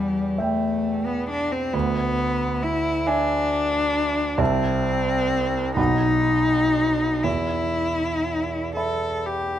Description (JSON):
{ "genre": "classical, romantic duo for cello and grand piano", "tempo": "39-46 BPM (dotted quarters)", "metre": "6/8", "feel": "rubato", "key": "E minor", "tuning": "A4 = 440 Hz", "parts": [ { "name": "rich cello", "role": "melody", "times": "0.0-9.6 s", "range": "G3 to A4", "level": "-22 LUFS", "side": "left 2 dB", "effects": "none" }, { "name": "clear concert grand piano", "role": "accompaniment", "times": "0.0-9.6 s", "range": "B1 to B5", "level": "-25 LUFS", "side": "right 3 dB", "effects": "none" } ], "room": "moderate recital hall reverb, RT60 1.5 s", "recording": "close, detailed microphones", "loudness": "-20 LUFS", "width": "side -11 dB against mid", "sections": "0.0-9.6 A section", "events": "none", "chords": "0.0 Em; 1.7 E7/D; 4.4 Am/C; 5.8 B; 7.2 E5", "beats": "0.39 | 1.74 3.07 | 4.40 5.78 | 7.24 8.76" }